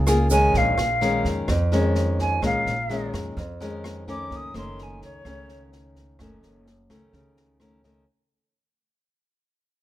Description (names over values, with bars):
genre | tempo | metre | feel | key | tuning
bossa nova | 128 BPM | 4/4 | straight | unclear | A4 = 440 Hz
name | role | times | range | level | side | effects
nylon-string guitar | accompaniment | 0.0-8.0 s | F2 to Ab4 | -26 LUFS | left 2 dB | none
upright bass | bass | 0.0-8.0 s | Gb1 to F2 | -26 LUFS | right 1 dB | none
open jazz drum kit | drums | 0.1-7.9 s | kick drum, rim click, snare drum | -32 LUFS | right 1 dB | none
tube shaker | percussion | 0.1-0.5 s | none | -33 LUFS | right 7 dB | none
silver concert flute | melody | 0.3-5.7 s | Db5 to Eb6 | -24 LUFS | equal | none
room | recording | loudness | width
light reverb | minimal, uncompressed stereo recording | -20 LUFS | side -14 dB against mid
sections
0.0-8.1 A section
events
fade-out 0.0-8.1; flute solo 0.0-8.1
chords
0.0 Gbmaj9 (rootless); 0.5 Bbm7; 4.3 Gbm6